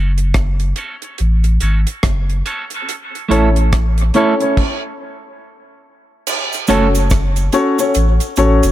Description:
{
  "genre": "dub reggae",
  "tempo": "71 BPM",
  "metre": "4/4",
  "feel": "swing 62% on 16ths",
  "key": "F# minor",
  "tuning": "A4 = 442 Hz",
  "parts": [
    { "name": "clean electric guitar", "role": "accompaniment", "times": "0.0-6.9 s", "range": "A3 to A4", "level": "-20 LUFS", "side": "right 4 dB", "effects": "high-pass filter, low-pass filter, dub echo" },
    { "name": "warm grand piano", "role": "stabs", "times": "0.0-8.6 s", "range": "C#4 to C#5", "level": "-18 LUFS", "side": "left 2 dB", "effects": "high-pass filter, low-pass filter, dub echo" },
    { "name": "warm sub bass", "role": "bass", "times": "0.0-8.7 s", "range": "F#1 to A1", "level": "-14 LUFS", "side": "equal", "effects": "none" },
    { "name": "deep reggae drum kit", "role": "drums", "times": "0.2-8.7 s", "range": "crash cymbal, hi-hat, kick drum, rim click", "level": "-19 LUFS", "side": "right 1 dB", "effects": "none" },
    { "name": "cabasa", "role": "percussion", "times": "6.3-8.7 s", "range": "none", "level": "-29 LUFS", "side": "right 5 dB", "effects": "none" }
  ],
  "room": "studio ambience",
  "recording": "echo-heavy mix",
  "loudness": "-13 LUFS",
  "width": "side -14 dB against mid",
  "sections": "0.0-6.3 A section; 6.3-8.7 B section",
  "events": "filter sweep 0.0-6.3; stop 4.6-6.3",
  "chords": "0.0 F#m; 2.9 A; 6.3 F#m",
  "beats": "0.34 1.19 2.04 | 2.88 3.73 4.57 5.42 | 6.26 7.11 7.95"
}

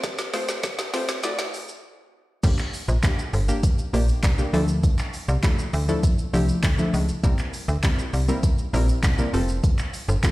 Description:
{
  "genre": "dance-pop",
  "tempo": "100 BPM",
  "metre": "4/4",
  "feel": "straight",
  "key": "G dorian",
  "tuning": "A4 = 439 Hz",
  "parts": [
    { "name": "analog pluck", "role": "accompaniment", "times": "0.0-10.3 s", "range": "F3 to D5", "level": "-27 LUFS", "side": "left 1 dB", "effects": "chorus, sidechain pumping" },
    { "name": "smooth R&B drum kit", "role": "drums", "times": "0.0-10.3 s", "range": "crash cymbal, handclaps, hi-hat, kick drum, shaker, snare drum", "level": "-24 LUFS", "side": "equal", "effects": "none" },
    { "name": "slap-like FM bass", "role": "bass", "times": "2.4-10.2 s", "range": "F1 to D2", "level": "-22 LUFS", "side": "equal", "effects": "sidechain pumping" }
  ],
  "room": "digital ambience",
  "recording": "played on a big sound system in a bare room, stone room reverb, high-pass filter",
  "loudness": "-20 LUFS",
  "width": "side -18 dB against mid",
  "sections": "0.0-2.4 A section; 2.4-10.3 B section",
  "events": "build-up 0.0-2.4; drum fill 0.0-1.8; filter sweep 0.0-2.4; break 1.8-2.4; drop 2.4-10.3",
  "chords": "0.0 F; 1.2 Dadd9; 2.4 Gm; 4.5 Dmadd9; 7.2 C7; 9.3 F",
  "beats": "| 0.04 0.64 1.24 1.83 | 2.44 3.04 3.63 4.24 | 4.83 5.43 6.04 6.63 | 7.24 7.83 8.44 9.04 | 9.63 10.23"
}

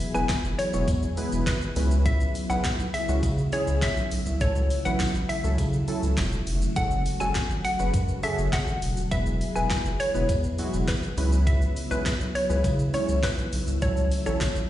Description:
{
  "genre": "dance-pop",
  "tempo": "102 BPM",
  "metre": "4/4",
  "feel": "straight",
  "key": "C# minor",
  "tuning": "A4 = 440 Hz",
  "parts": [
    { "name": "ensemble organ-string", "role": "sustained chords", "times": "0.0-14.7 s", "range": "C#3 to G#4", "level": "-33 LUFS", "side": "equal", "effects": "ensemble chorus, sidechain pumping, plate reverb" },
    { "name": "pop drum kit", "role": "drums", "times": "0.0-14.7 s", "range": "handclaps, hi-hat, kick drum, shaker, snare drum", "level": "-29 LUFS", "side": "equal", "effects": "overdrive" },
    { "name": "tambourine", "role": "percussion", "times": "0.0-14.5 s", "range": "none", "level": "-44 LUFS", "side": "left 4 dB", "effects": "slapback echo" },
    { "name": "hollow square pluck", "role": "melody", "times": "0.1-14.4 s", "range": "B4 to G#5", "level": "-30 LUFS", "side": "left 1 dB", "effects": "chorus, sidechain pumping, plate reverb, slapback echo, digital delay" },
    { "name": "warm analog keys", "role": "accompaniment", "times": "0.1-14.5 s", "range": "F#3 to C#5", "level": "-32 LUFS", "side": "right 1 dB", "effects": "chorus, sidechain pumping, plate reverb, slapback echo" },
    { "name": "round analog bass", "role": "bass", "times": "0.1-14.7 s", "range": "D#1 to C#3", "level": "-26 LUFS", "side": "equal", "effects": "sidechain pumping" }
  ],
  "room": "light reverb",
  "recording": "live gig heard through the venue's PA, recital hall reverb, nothing above 10.8 kHz",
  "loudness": "-23 LUFS",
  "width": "side -13 dB against mid",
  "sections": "0.0-14.7 A section",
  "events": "none",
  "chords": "0.0 E; 1.8 C#m7; 4.4 A6; 6.8 F#madd9; 9.1 E; 11.2 C#m7; 13.8 A6",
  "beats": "0.29 0.88 1.47 | 2.06 2.65 3.23 3.82 | 4.41 5.00 5.59 6.17 | 6.76 7.35 7.94 8.53 | 9.12 9.70 10.29 10.88 | 11.47 12.06 12.65 13.23 | 13.82 14.41"
}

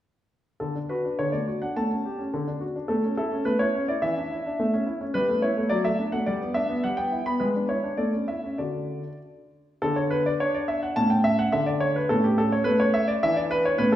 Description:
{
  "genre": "classical-period piano sonatina",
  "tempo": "106 BPM",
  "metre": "2/4",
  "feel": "rubato",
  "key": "D major",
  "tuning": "A4 = 440 Hz",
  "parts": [
    { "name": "clear grand piano", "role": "solo", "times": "0.6-14.0 s", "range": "A2 to B5", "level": "-23 LUFS", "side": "equal", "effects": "none" }
  ],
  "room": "wet recital hall reverb, RT60 1.7 s",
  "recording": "heard from further back in the room",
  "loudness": "-23 LUFS",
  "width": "side -12 dB against mid",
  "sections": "0.6-9.8 A section; 9.8-14.0 B section",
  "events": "none",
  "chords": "0.6 D; 1.8 A7; 2.3 D; 2.9 A; 4.0 Dsus2/E; 4.6 A; 5.2 A7/G; 5.7 D/F#; 6.3 G; 6.8 Em/G; 7.4 E7/G#; 8.0 A; 8.6 D; 9.8 N.C.; 11.0 A; 11.5 N.C.; 12.1 A; 13.2 Bmadd11/E",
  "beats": "| 0.61 1.19 | 1.76 2.33 | 2.90 3.47 | 4.03 4.59 | 5.15 5.71 | 6.28 6.85 | 7.42 8.00 | 8.60 9.22 | 9.83 10.41 | 10.98 11.54 | 12.11 12.67 | 13.23 13.80"
}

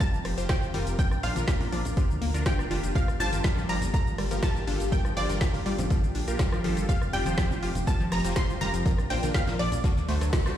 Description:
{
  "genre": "progressive house",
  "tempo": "122 BPM",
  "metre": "4/4",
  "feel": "straight",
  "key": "unclear",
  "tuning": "A4 = 439 Hz",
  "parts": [
    { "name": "wide unison pluck", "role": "melody", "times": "0.0-10.5 s", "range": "D5 to C6", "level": "-35 LUFS", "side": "right 1 dB", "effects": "ping-pong delay" },
    { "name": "soft round pluck", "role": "second line", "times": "0.0-10.5 s", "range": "D6 to C7", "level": "-41 LUFS", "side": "left 1 dB", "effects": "none" },
    { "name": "lush unison pad", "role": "sustained chords", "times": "0.0-10.6 s", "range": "C3 to Bb4", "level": "-37 LUFS", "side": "right 1 dB", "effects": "chorus, vintage 12-bit sampler grit, sidechain pumping" },
    { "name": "analog pluck", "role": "arpeggios", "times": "0.0-10.4 s", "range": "F3 to F#4", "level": "-35 LUFS", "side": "equal", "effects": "chorus, sidechain pumping, dub echo" },
    { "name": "supersaw stab", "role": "stabs", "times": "0.0-10.5 s", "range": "D4 to F5", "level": "-35 LUFS", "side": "left 2 dB", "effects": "phaser, sidechain pumping, dub echo" },
    { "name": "deep house drum kit", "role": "drums", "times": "0.0-10.6 s", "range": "hi-hat, rim click, shaker, snare drum", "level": "-36 LUFS", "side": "equal", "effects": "none" },
    { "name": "electronic kick drum", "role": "drums", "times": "0.0-10.4 s", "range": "none", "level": "-25 LUFS", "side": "equal", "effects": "none" },
    { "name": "natural country drum kit", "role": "drums", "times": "0.0-10.6 s", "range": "hi-hat, snare drum", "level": "-45 LUFS", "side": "left 2 dB", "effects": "none" },
    { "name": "dark detuned saw bass", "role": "bass", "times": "0.1-10.5 s", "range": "F1 to D2", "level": "-30 LUFS", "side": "equal", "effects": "tube saturation, sidechain pumping" },
    { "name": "congas", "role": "percussion", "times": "0.1-10.1 s", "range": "none", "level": "-37 LUFS", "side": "left 2 dB", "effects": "sidechain pumping on perc" }
  ],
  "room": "light reverb",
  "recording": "played on a big sound system in a bare room, stone room reverb",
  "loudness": "-24 LUFS",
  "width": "side -11 dB against mid",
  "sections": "0.0-10.6 A section",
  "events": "band accent 10.3",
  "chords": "0.0 Fsus2; 3.0 Gm7; 6.9 Fsus2; 8.9 Bb; 9.8 D",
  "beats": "0.00 0.49 | 0.99 1.48 1.97 2.46 | 2.95 3.45 3.94 4.43 | 4.92 5.41 5.91 6.40 | 6.89 7.38 7.87 8.36 | 8.86 9.35 9.84 10.33"
}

